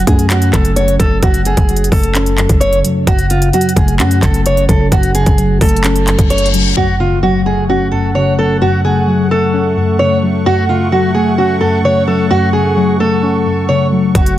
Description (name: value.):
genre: hip hop, trap.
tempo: 130 BPM.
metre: 4/4.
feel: half-time.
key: F# minor.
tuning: A4 = 441 Hz.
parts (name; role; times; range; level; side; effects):
muted felt-like synth keys; accompaniment; 0.0-14.4 s; F#2 to C#4; -15 LUFS; left 2 dB; chorus, low-pass filter.
growling 808-style bass; bass; 0.0-6.7, 14.2-14.4 s; F#1 to F#2; -14 LUFS; equal; none.
trap drum kit; drums; 0.0-6.6, 14.2-14.4 s; handclaps, hi-hat, kick drum; -14 LUFS; equal; none.
fingerpicked steel-string acoustic guitar; melody; 0.1-14.3 s; E#4 to C#5; -15 LUFS; right 1 dB; low-pass filter, digital delay.
reverse cymbal and impact; sound effects; 6.0-8.6 s; none; -21 LUFS; left 1 dB; none.
warm analog pad; sustained chords; 6.8-14.4 s; A3 to C#6; -20 LUFS; right 2 dB; chorus.
room: light reverb, digital ambience.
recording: dense, heavily limited modern master.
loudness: -10 LUFS.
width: side -13 dB against mid.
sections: 0.0-6.8 A section; 6.8-14.4 B section.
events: reverse cymbal 6.0-6.8; impact 6.8-8.6.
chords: 0.0 F#m.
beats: 0.30 0.77 | 1.23 1.69 2.15 2.61 | 3.07 3.53 4.00 4.46 | 4.92 5.38 5.84 6.30 | 6.76 7.23 7.69 8.15 | 8.61 9.07 9.53 10.00 | 10.46 10.92 11.38 11.84 | 12.30 12.77 13.23 13.69 | 14.15.